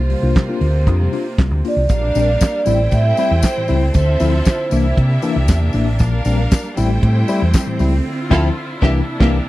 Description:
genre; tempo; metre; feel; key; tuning
disco; 117 BPM; 4/4; straight; unclear; A4 = 440 Hz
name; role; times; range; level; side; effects
vibraphone with soft mallets; melody; 0.0-4.9 s; C5 to E5; -21 LUFS; right 3 dB; none
clear studio string section; sustained chords; 0.0-9.5 s; C3 to F4; -26 LUFS; right 1 dB; none
hollow-body short-scale fingered electric bass; bass; 0.0-9.4 s; A1 to C3; -16 LUFS; equal; none
tine electric piano; accompaniment; 0.1-9.4 s; A2 to F4; -21 LUFS; left 5 dB; medium stereo tremolo
damped 70s drum kit; drums; 0.1-9.4 s; crash cymbal, handclaps, hi-hat, kick drum, snare drum; -15 LUFS; equal; none
clear studio string section; second line; 1.9-9.4 s; Bb3 to G5; -25 LUFS; right 1 dB; none
tambourine; percussion; 1.9-7.9 s; none; -33 LUFS; left 14 dB; none
room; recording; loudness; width
little or no reverb; dry, close 1970s-style studio recording; -14 LUFS; side -16 dB against mid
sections
0.0-1.9 A section; 1.9-9.5 B section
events
band accent 8.1-9.5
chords
0.0 C7sus4; 1.9 Bb6; 2.7 Am7; 3.9 Dm9; 4.7 C9; 6.0 Bb6; 6.8 Am7; 8.1 Dm9; 8.8 C9

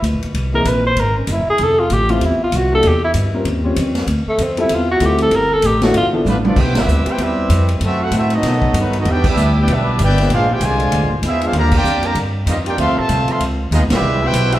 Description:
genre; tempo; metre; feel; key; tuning
jazz, big band swing; 193 BPM; 4/4; swing 60% on 8ths; C major from 6.6 s; A4 = 440 Hz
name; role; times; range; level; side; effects
breathy tenor saxophone; melody; 0.0-6.1 s; A3 to C5; -16 LUFS; equal; none
upright bass; bass; 0.0-14.6 s; F1 to B2; -17 LUFS; equal; none
swinging big-band drum kit; drums; 0.0-14.6 s; crash cymbal, hi-hat, kick drum, ride cymbal, snare drum, toms; -24 LUFS; equal; none
warm grand piano; accompaniment; 0.5-6.2 s; E3 to Db5; -21 LUFS; left 2 dB; none
clear trumpet section; melody; 6.3-14.6 s; A3 to C6; -19 LUFS; equal; none
clear trombone section; second line; 6.3-14.6 s; B2 to G4; -21 LUFS; right 2 dB; none
room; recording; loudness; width
wet large studio reverb, RT60 1.2 s; heard from further back in the room; -13 LUFS; side -14 dB against mid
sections
0.0-6.6 A section; 6.6-14.6 B section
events
tenor saxophone solo 0.0-6.6; drum fill 6.3-6.6; band accent 6.7, 9.2, 11.7, 13.9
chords
0.3 C7(#5, no3); 1.6 Fmaj9; 2.8 Edim; 3.5 Eb13; 4.1 Dm11; 5.3 G13; 6.6 Cmaj7; 7.8 F#m7b5; 8.4 B7b13; 9.0 Em7; 10.3 Bb9; 11.5 Ebmaj9; 12.8 Dm9; 13.4 Db7sus2; 14.0 Cmaj7

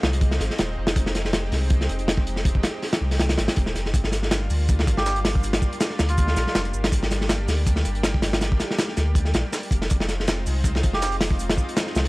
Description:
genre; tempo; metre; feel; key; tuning
drum and bass, jungle; 161 BPM; 4/4; swing 54% on 16ths; G phrygian; A4 = 444 Hz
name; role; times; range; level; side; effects
lush unison pad; sustained chords; 0.0-12.1 s; G3 to G4; -32 LUFS; equal; chorus, vintage 12-bit sampler grit
saturated sub bass; bass; 0.0-12.1 s; Eb1 to D2; -24 LUFS; equal; none
crunchy breakbeat drum kit; drums; 0.0-12.1 s; hi-hat, kick drum, snare drum; -22 LUFS; equal; none
breakbeat sampler-style drum kit; drums; 3.9-12.1 s; hi-hat, shaker, snare drum; -33 LUFS; right 1 dB; high-pass filter on perc, high-pass filter on snare, high-pass filter on hats
melodica; melody; 5.0-6.6, 10.9-11.2 s; F4 to G4; -30 LUFS; right 2 dB; dub echo
room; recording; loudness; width
little or no reverb; dry, gritty hardware recording, vinyl crackle; -20 LUFS; side -22 dB against mid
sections
0.0-12.1 A section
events
none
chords
0.0 Fm7; 3.9 Gm7; 9.9 Fm7

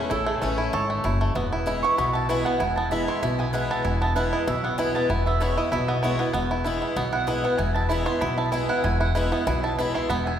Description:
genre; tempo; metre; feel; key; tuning
bluegrass; 192 BPM; 4/4; swing 54% on 8ths; E major; A4 = 440 Hz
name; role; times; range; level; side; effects
bluegrass banjo; melody; 0.0-10.4 s; A3 to A4; -28 LUFS; right 2 dB; none
picked swing-style acoustic guitar; accompaniment; 0.0-10.4 s; E2 to E4; -27 LUFS; left 2 dB; none
mandolin; stabs; 0.0-10.4 s; G#4 to C#6; -28 LUFS; right 3 dB; none
upright bass; bass; 0.1-10.4 s; E1 to B1; -27 LUFS; equal; none
room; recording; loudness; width
wet recital hall reverb, RT60 1.7 s; recorded in a church or concert hall; -22 LUFS; side -9 dB against mid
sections
0.0-10.4 A section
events
mandolin solo 0.0-10.4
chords
0.0 A; 1.4 E

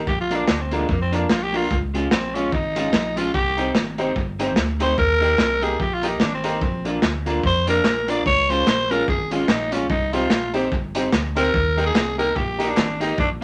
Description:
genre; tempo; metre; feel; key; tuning
ska; 146 BPM; 4/4; swing 58% on 8ths; Eb major; A4 = 441 Hz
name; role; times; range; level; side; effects
electric guitar at the edge of break-up; accompaniment; 0.0-13.4 s; Ab3 to G4; -30 LUFS; equal; none
warm upright piano; stabs; 0.0-13.4 s; Db4 to C5; -30 LUFS; equal; none
fingered electric bass; bass; 0.0-13.4 s; G1 to F2; -30 LUFS; equal; none
growling tenor saxophone; melody; 0.1-13.3 s; Ab3 to D5; -24 LUFS; equal; none
crunchy breakbeat drum kit; drums; 0.1-13.3 s; hi-hat, kick drum, snare drum; -26 LUFS; equal; dub echo
group handclap; percussion; 5.4-12.9 s; none; -36 LUFS; equal; none
room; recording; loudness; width
moderate studio reverb, RT60 0.5 s; none; -21 LUFS; mono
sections
0.0-13.4 A section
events
tenor saxophone solo 0.0-13.4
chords
0.1 Bb; 1.7 Db; 3.3 Cm; 5.0 Eb; 6.6 Bb; 8.3 Db; 9.9 Cm; 11.5 Eb

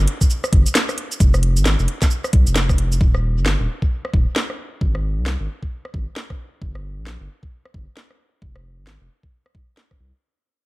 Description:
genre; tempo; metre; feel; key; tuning
UK garage, two-step garage; 133 BPM; 4/4; swing 61% on 16ths; F minor; A4 = 440 Hz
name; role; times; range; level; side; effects
saturated sub bass; bass; 0.0-10.1 s; Eb1 to C2; -20 LUFS; equal; sidechain pumping
garage drum kit; drums; 0.1-10.0 s; hi-hat, rim click, shaker, snare drum; -22 LUFS; equal; studio reverb
electronic kick drum; drums; 0.2-10.0 s; none; -17 LUFS; equal; studio reverb
room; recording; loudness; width
digital ambience; echo-heavy mix; -17 LUFS; side -20 dB against mid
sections
0.0-10.2 A section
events
fade-out 0.0-10.2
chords
none

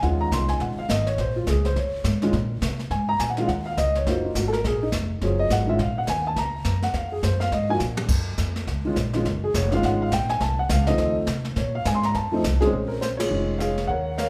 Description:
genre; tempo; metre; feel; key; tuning
jazz piano trio; 208 BPM; 4/4; swing 61% on 8ths; Bb minor; A4 = 440 Hz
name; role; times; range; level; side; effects
warm upright piano; melody; 0.0-14.3 s; Bb2 to C6; -27 LUFS; equal; none
upright bass; bass; 0.0-14.3 s; F1 to C3; -28 LUFS; equal; none
jazz brush drum kit; drums; 0.0-14.3 s; brushed snare drum, crash cymbal, hi-hat, kick drum, ride cymbal, snare drum, toms; -32 LUFS; equal; none
room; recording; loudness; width
moderate recital hall reverb, RT60 1.7 s; recorded in a church or concert hall; -24 LUFS; mono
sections
0.0-12.7 A section; 12.7-14.3 B section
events
upright piano solo 0.0-12.7; drum fill 7.8; band accent 13.2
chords
0.0 Ebsus2; 1.2 Bbm9; 3.5 Ebm9; 5.8 Bbm7; 8.1 Gbmaj7; 10.4 F7; 11.6 Absus2; 12.1 F7; 12.7 Bbm9

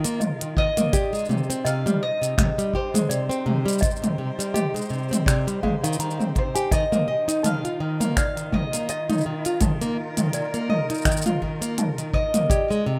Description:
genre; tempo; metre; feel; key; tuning
folktronica; 83 BPM; 4/4; swing 56% on 16ths; Eb major; A4 = 440 Hz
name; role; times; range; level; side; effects
rich string quartet; sustained chords; 0.0-13.0 s; Eb3 to C5; -38 LUFS; equal; none
nylon-string guitar; arpeggios; 0.0-13.0 s; C3 to Eb5; -28 LUFS; equal; digital delay
minimal click drum kit; drums; 0.0-12.8 s; finger snaps, hi-hat, shaker, toms; -28 LUFS; equal; none
toy piano; second line; 0.2-12.6 s; Eb4 to Bb5; -35 LUFS; equal; digital delay
bowl-back mandolin; melody; 0.6-12.8 s; C5 to F5; -30 LUFS; equal; digital delay
kick drum; drums; 0.6-12.7 s; none; -27 LUFS; equal; none
room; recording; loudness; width
light reverb, small room reverb; rough home demo mix; -24 LUFS; mono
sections
0.0-13.0 A section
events
none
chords
0.0 Ebsus2; 0.9 Abmaj7 (rootless); 6.7 Ebsus2

